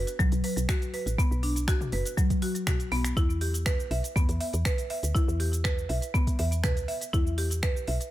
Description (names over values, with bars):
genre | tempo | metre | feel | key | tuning
afro house | 121 BPM | 4/4 | straight | unclear | A4 = 440 Hz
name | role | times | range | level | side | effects
buzzing marimba with hard mallets | arpeggios | 0.0-8.0 s | F#3 to E5 | -31 LUFS | equal | sidechain pumping, tape echo
woody FM bass | bass | 0.0-8.0 s | F#1 to E2 | -29 LUFS | equal | sidechain pumping
deep house drum kit | drums | 0.1-8.1 s | cabasa, finger snaps, hi-hat, toms | -35 LUFS | equal | studio reverb
electronic kick drum | drums | 0.2-7.7 s | none | -26 LUFS | equal | studio reverb
room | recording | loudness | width
little or no reverb | none | -25 LUFS | side -14 dB against mid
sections
0.0-8.1 A section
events
none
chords
0.0 B5; 3.2 E5